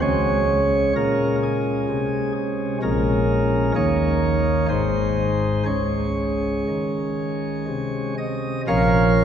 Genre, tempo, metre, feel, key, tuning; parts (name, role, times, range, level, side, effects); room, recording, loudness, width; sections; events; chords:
classical, chorale-style piece for pipe organ; 58-65 BPM; 3/4; rubato; A4 = 440 Hz
pipe organ, sparkling flutes; solo; 0.0-9.2 s; Ab1 to F5; -19 LUFS; equal
wet church reverb, RT60 3.7 s; heard from further back in the room; -19 LUFS; side -8 dB against mid
0.0-8.7 A section
0.0 Db5; 2.8 Bbm7; 3.7 Eb5; 4.7 Ab; 5.7 Db5; 8.7 Bbm